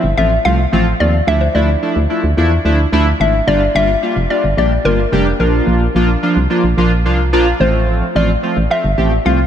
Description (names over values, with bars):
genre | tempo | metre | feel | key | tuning
dance-pop | 109 BPM | 4/4 | straight | G dorian | A4 = 440 Hz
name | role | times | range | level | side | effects
hollow square pluck | melody | 0.0-9.5 s | Bb4 to F5 | -18 LUFS | left 2 dB | chorus, analog delay
chorused polysynth | accompaniment | 0.0-9.4 s | F3 to G4 | -16 LUFS | right 1 dB | none
solid FM bass | bass | 0.0-9.5 s | F1 to E2 | -15 LUFS | equal | none
room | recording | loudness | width
moderate cathedral reverb, RT60 4.0 s | dreamy mix soaked in reverb | -12 LUFS | side -9 dB against mid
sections
0.0-9.5 A section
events
none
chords
0.0 F; 1.3 Dmadd9; 3.5 Gm7; 5.4 Bb; 7.6 F/A